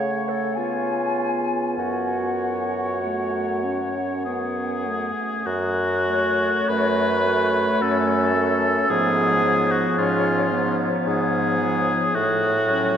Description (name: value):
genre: classical, slow romantic movement for wind quintet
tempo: 47-57 BPM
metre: 3/4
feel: rubato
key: F# minor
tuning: A4 = 440 Hz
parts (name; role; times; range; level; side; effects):
- mellow hollow silver concert flute; melody; 0.0-13.0 s; C#5 to G#5; -28 LUFS; left 4 dB; none
- warm oboe; second line; 0.0-13.0 s; E#4 to C#5; -24 LUFS; left 1 dB; none
- bright clarinet; accompaniment; 0.0-13.0 s; A3 to C#5; -28 LUFS; right 3 dB; none
- mellow French horn; accompaniment; 0.0-13.0 s; E#3 to C#4; -28 LUFS; right 1 dB; none
- warm bassoon; bass; 0.0-13.0 s; F#2 to C#3; -25 LUFS; right 1 dB; none
room: wet cathedral reverb, RT60 4.3 s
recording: none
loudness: -19 LUFS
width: side -8 dB against mid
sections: 0.0-5.5 A section; 5.5-13.0 A section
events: none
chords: 0.0 F#m/C#; 0.6 C#7; 1.8 F#m; 8.9 C#7/G#; 12.1 F#m/A